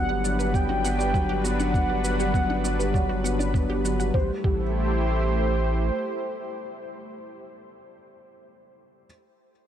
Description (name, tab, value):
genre	piano and strings electronica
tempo	100 BPM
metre	4/4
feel	straight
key	A dorian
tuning	A4 = 440 Hz
part	warm velvety synth lead	melody	0.0-7.3 s	C5 to G5	-31 LUFS	right 1 dB	chorus
part	lush unison pad	sustained chords	0.0-7.3 s	F#3 to C5	-31 LUFS	right 1 dB	chorus, sidechain pumping
part	felt-muted upright piano	riff	0.0-9.1 s	F#3 to D4	-29 LUFS	left 3 dB	ping-pong delay
part	round analog bass	bass	0.0-5.9 s	G1 to A1	-27 LUFS	equal	sidechain pumping
part	wide unison pluck	arpeggios	0.1-4.6 s	F#4 to F#5	-35 LUFS	right 4 dB	sidechain pumping, ping-pong delay
part	shaker	drums	0.2-4.1 s	none	-36 LUFS	right 2 dB	none
part	electronic kick drum	drums	0.5-4.6 s	none	-25 LUFS	equal	none
room	light reverb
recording	none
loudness	-22 LUFS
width	side -10 dB against mid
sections	0.0-4.1 A section; 4.1-6.5 B section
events	drop 0.0-4.1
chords	0.0 Gmaj7; 4.1 Am7